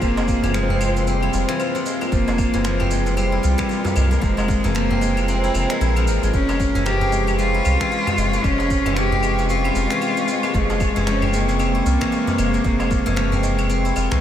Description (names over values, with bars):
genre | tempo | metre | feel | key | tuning
organic downtempo | 114 BPM | 4/4 | swing 59% on 16ths | unclear | A4 = 441 Hz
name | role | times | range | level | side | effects
rich cello | melody | 0.0-14.2 s | F3 to G4 | -23 LUFS | equal | tape echo
dark chamber string section | sustained chords | 0.0-14.2 s | Ab3 to Db6 | -28 LUFS | left 3 dB | sidechain pumping
steel-string zither | arpeggios | 0.0-14.2 s | C3 to F4 | -23 LUFS | left 2 dB | tape echo
round analog bass | bass | 0.0-14.2 s | F1 to C2 | -22 LUFS | equal | none
electronic claves, shaker and finger snaps | drums | 0.0-14.2 s | none | -31 LUFS | equal | none
electronic kick drum | drums | 0.0-14.2 s | none | -24 LUFS | equal | overdrive
darbuka | percussion | 0.2-14.1 s | none | -29 LUFS | right 2 dB | none
room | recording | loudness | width
moderate huge ambient reverb, RT60 7.9 s | dreamy mix soaked in reverb | -17 LUFS | side -10 dB against mid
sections
0.0-14.2 A section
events
none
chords
0.0 Fmadd9; 6.3 Db/F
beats
| 0.02 0.54 1.07 1.59 | 2.12 2.65 3.17 3.70 | 4.23 4.75 5.28 5.81 | 6.33 6.86 7.38 7.91 | 8.44 8.96 9.49 10.02 | 10.54 11.07 11.60 12.12 | 12.65 13.17 13.70